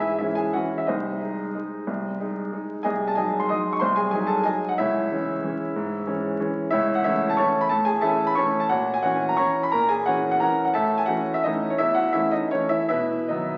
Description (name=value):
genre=classical, piano waltz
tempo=144-200 BPM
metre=3/4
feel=rubato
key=C# minor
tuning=A4 = 439 Hz
part: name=clear upright piano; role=solo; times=0.0-13.6 s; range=B#1 to D#6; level=-24 LUFS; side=equal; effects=none
room=wet recital hall reverb, RT60 1.8 s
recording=very old 78 rpm record, vinyl crackle, nothing above 7.6 kHz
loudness=-24 LUFS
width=mono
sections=0.0-13.6 A section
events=none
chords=0.0 C#m; 0.9 G#/B#; 2.8 G#7/B#; 4.8 C#m; 6.7 A/C#; 7.7 A; 8.7 F#7/A#; 10.7 A; 12.9 B